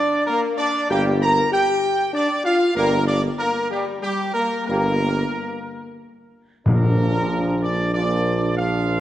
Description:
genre	classical, ceremonial fanfare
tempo	95 BPM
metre	3/4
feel	straight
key	unclear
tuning	A4 = 440 Hz
part	clear trumpet section	melody	0.0-9.0 s	G4 to Bb5	-22 LUFS	right 1 dB	none
part	warm French horn section	sustained chords	0.0-9.0 s	G3 to Bb4	-25 LUFS	left 2 dB	none
part	clear trombone section	sustained chords	0.9-9.0 s	Bb2 to Bb3	-28 LUFS	right 1 dB	none
part	mellow tuba	bass	0.9-9.0 s	G1 to Bb1	-24 LUFS	right 1 dB	none
part	timpani	percussion	6.7-7.6 s	Bb2	-21 LUFS	equal	none
room	wet concert hall reverb, RT60 1.9 s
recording	worn, warbling old tape, cassette tape, warbly pitch drift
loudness	-18 LUFS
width	side -12 dB against mid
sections	0.0-6.7 A section; 6.7-9.0 B section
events	none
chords	0.0 Gm; 6.7 Bb

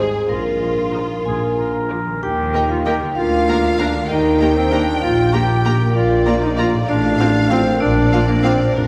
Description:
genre	cinematic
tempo	64 BPM (dotted quarters)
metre	6/8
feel	straight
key	Eb major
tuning	A4 = 440 Hz
part	rich studio violin section	melody	0.0-8.9 s	Bb4 to Eb6	-28 LUFS	equal	none
part	vibraphone with medium hard mallets	melody	0.0-8.9 s	Ab4 to Bb5	-26 LUFS	equal	none
part	clear studio violin section	second line	0.0-8.5 s	F4 to Bb5	-31 LUFS	equal	none
part	rich studio viola section	accompaniment	0.0-8.5 s	F3 to C5	-29 LUFS	equal	none
part	concert harp	arpeggios	0.0-8.9 s	Ab2 to F5	-27 LUFS	equal	none
part	clear studio double bass section	bass	0.0-8.9 s	F1 to Eb2	-26 LUFS	equal	none
part	mellow tuba	bass	0.0-8.9 s	F1 to Eb2	-27 LUFS	equal	none
part	rich studio cello section	bass	0.0-8.9 s	F2 to Eb3	-27 LUFS	equal	none
part	warm clarinet	second line	1.3-8.9 s	Bb3 to Bb4	-22 LUFS	equal	none
room	wet cathedral reverb, RT60 4.3 s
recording	recorded in a church or concert hall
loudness	-17 LUFS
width	mono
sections	0.0-2.2 A section; 2.2-8.9 B section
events	none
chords	0.3 Bbsus4; 1.3 Bb; 2.2 Eb; 3.2 Bb/D; 4.1 Eb; 6.0 Bb; 6.9 F/A; 7.8 Bb

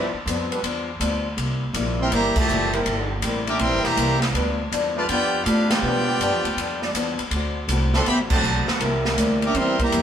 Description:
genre	jazz, big band swing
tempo	162 BPM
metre	4/4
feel	swing 66% on 8ths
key	G major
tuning	A4 = 440 Hz
part	brilliant trumpet section	melody	0.0-10.0 s	D4 to D6	-24 LUFS	equal	none
part	warm trombone section	second line	0.0-10.0 s	Bb2 to G4	-25 LUFS	right 1 dB	none
part	fingerpicked acoustic archtop guitar	accompaniment	0.0-10.0 s	G2 to F#4	-28 LUFS	left 4 dB	none
part	mellow trombone section	sustained chords	0.0-9.8 s	F#3 to D5	-29 LUFS	right 1 dB	none
part	upright bass	bass	0.0-10.0 s	E1 to B2	-26 LUFS	right 1 dB	none
part	swinging big-band drum kit	drums	0.3-10.0 s	crash cymbal, hi-hat, kick drum, ride cymbal, snare drum	-26 LUFS	equal	none
room	wet small room reverb, RT60 0.5 s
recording	band playing live in one room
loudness	-20 LUFS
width	side -9 dB against mid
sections	0.0-10.0 A section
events	band accent 2.3, 5.6, 8.2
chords	0.0 G7; 1.4 C7; 4.3 G7; 7.3 D7; 8.8 C7

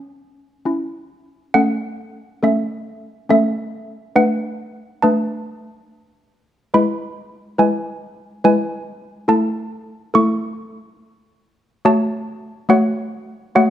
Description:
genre	classical, tune for handbells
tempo	70 BPM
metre	3/4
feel	straight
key	A major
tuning	A4 = 441 Hz
part	malleted handbells	solo	0.0-13.7 s	G#3 to C#6	-16 LUFS	equal	none
room	wet recital hall reverb, RT60 1.7 s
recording	close, detailed microphones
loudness	-17 LUFS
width	side -11 dB against mid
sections	0.0-1.6 A section; 1.6-13.7 B section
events	none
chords	0.0 A; 4.2 Bm7/A; 6.7 E/G#; 9.3 A; 11.8 F#m/A

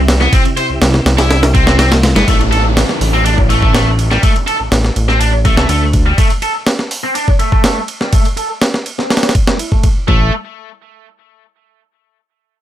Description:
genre	breakbeat, breaks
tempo	123 BPM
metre	4/4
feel	straight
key	unclear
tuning	A4 = 441 Hz
part	tonewheel organ	sustained chords	0.0-2.2 s	C3 to G4	-21 LUFS	right 1 dB	chorus vibrato, fast rotary speaker, sidechain pumping
part	fat analog bass	bass	0.0-6.1, 10.1-10.3 s	G1 to D2	-13 LUFS	equal	none
part	breakbeat sampler-style drum kit	drums	0.1-10.2 s	hi-hat, kick drum, ride cymbal, snare drum	-13 LUFS	equal	none
part	high-gain distorted guitar	riff	0.2-10.3 s	G3 to C5	-17 LUFS	equal	distortion, overdrive, low-pass filter, ping-pong delay
part	downlifter	sound effects	2.3-6.2 s	none	-22 LUFS	equal	none
room	light reverb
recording	none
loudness	-10 LUFS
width	side -12 dB against mid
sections	0.0-2.3 A section; 2.3-10.1 B section; 10.1-12.0 C section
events	drop 0.0-2.3; filter sweep on distorted electric guitar 2.3-10.1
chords	0.0 C; 2.3 N.C.

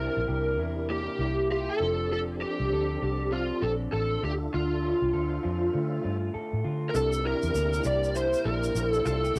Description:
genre	indie pop, bedroom pop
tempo	99 BPM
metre	4/4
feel	swing 60% on 16ths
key	unclear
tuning	A4 = 440 Hz
part	overdriven slide guitar	melody	0.0-9.4 s	F4 to D5	-31 LUFS	equal	ensemble chorus, cassette tape, analog delay
part	electric guitar through a small old amp	accompaniment	0.0-9.4 s	C3 to A4	-36 LUFS	equal	subtle chorus, warbly pitch drift, cassette tape
part	mellow tonewheel organ	accompaniment	0.0-9.4 s	C4 to A5	-40 LUFS	equal	chorus vibrato, fast rotary speaker, cassette tape
part	vintage muted fingered electric bass	bass	0.0-9.4 s	F1 to D3	-33 LUFS	equal	none
part	tube shaker	percussion	6.9-9.4 s	none	-46 LUFS	equal	none
room	light reverb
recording	home recording on cassette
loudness	-28 LUFS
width	mono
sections	0.0-6.9 A section; 6.9-9.4 B section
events	none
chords	0.0 C7; 1.8 F6; 4.2 Dmadd9; 6.9 C7

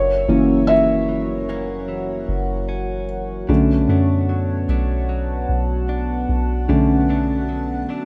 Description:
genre	contemporary R&B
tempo	75 BPM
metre	4/4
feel	straight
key	B minor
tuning	A4 = 439 Hz
part	felt-muted upright piano	accompaniment	0.0-8.1 s	D3 to E5	-21 LUFS	equal	none
part	chorused pulse-width pad	sustained chords	0.0-8.1 s	F#3 to A5	-29 LUFS	equal	none
part	direct-recorded clean electric guitar	arpeggios	0.0-8.1 s	F#2 to D4	-34 LUFS	equal	digital delay
part	soft 808-style bass	bass	0.0-7.9 s	F#1 to F#2	-25 LUFS	equal	none
room	light reverb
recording	rough home demo mix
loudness	-20 LUFS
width	mono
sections	0.0-8.1 A section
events	felt piano solo 0.0-8.1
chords	0.0 F#7; 3.5 Bm7

